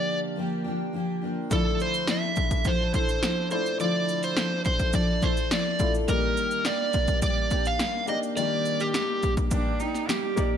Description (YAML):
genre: acoustic pop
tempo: 105 BPM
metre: 4/4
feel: straight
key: unclear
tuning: A4 = 440 Hz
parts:
  - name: overdriven slide guitar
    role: melody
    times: 0.0-9.3 s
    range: G4 to F5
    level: -27 LUFS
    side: right 1 dB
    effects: lush chorus, digital delay
  - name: picked steel-string acoustic guitar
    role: accompaniment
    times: 0.0-10.6 s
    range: D3 to A4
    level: -30 LUFS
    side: left 1 dB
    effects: double-tracked left and right
  - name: felt-muted upright piano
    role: accompaniment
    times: 1.5-10.6 s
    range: A3 to D5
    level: -35 LUFS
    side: left 6 dB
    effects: none
  - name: punchy analog drum machine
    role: drums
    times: 1.5-10.5 s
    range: kick drum, shaker, snare drum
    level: -27 LUFS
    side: equal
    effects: none
  - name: dark cello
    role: second line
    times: 9.5-10.6 s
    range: D4 to G4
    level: -29 LUFS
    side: right 6 dB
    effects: none
room: moderate plate reverb, RT60 1.7 s, small room ambience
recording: bright 1980s-style digital production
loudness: -23 LUFS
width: side -8 dB against mid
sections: 0.0-10.6 A section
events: none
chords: 0.0 Gm7; 1.5 Dmadd9; 6.1 Ebmaj7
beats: 0.37 0.94 | 1.51 2.08 2.65 3.23 | 3.80 4.37 4.94 5.51 | 6.08 6.65 7.22 7.80 | 8.37 8.94 9.51 10.08